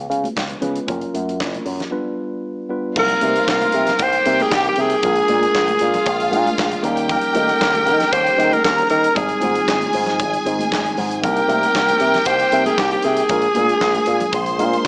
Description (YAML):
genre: disco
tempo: 116 BPM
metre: 4/4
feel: straight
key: C minor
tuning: A4 = 441 Hz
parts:
  - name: tine electric piano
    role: accompaniment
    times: 0.0-14.9 s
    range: Eb3 to C5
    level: -27 LUFS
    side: equal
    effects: none
  - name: picked electric bass with an envelope filter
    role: bass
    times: 0.0-14.9 s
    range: Gb1 to Eb3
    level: -25 LUFS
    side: equal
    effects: none
  - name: modern studio drum kit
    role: drums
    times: 0.1-14.9 s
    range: crash cymbal, handclaps, hi-hat, kick drum, snare drum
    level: -28 LUFS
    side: equal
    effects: gated reverb
  - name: congas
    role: percussion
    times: 0.1-14.8 s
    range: none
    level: -35 LUFS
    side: equal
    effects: none
  - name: rich studio violin section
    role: second line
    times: 2.9-14.9 s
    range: F4 to C6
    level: -26 LUFS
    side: equal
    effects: none
  - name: raspy alto saxophone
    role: melody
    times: 3.0-14.9 s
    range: G4 to C5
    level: -20 LUFS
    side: equal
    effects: none
room: light reverb, studio reverb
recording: small speaker sound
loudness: -18 LUFS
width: mono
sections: 0.0-3.0 A section; 3.0-14.9 B section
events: none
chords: 0.0 Db7; 0.9 Gbmaj7; 1.9 G7; 3.0 Cm7; 5.0 Bb7; 6.8 Eb7; 9.2 Ab; 11.2 Cm7; 13.3 Bb7